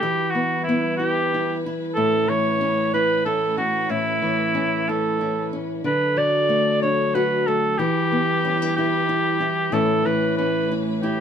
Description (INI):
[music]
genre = folk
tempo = 93 BPM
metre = 3/4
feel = straight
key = A mixolydian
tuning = A4 = 439 Hz
[part]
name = warm cor anglais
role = melody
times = 0.0-11.2 s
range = E4 to D5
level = -21 LUFS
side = right 2 dB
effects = none
[part]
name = nylon-string guitar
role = accompaniment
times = 0.0-11.2 s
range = A2 to F#4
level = -24 LUFS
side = left 2 dB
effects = none
[part]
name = warm studio string section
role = sustained chords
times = 0.0-11.2 s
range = F#3 to B4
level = -32 LUFS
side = right 2 dB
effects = none
[sound]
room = moderate studio ambience, RT60 0.5 s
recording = minimal, uncompressed stereo recording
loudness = -19 LUFS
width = side -8 dB against mid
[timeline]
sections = 0.0-11.2 A section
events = none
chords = 0.0 Em; 2.0 Aadd9; 5.8 D; 7.8 Em; 9.7 Aadd9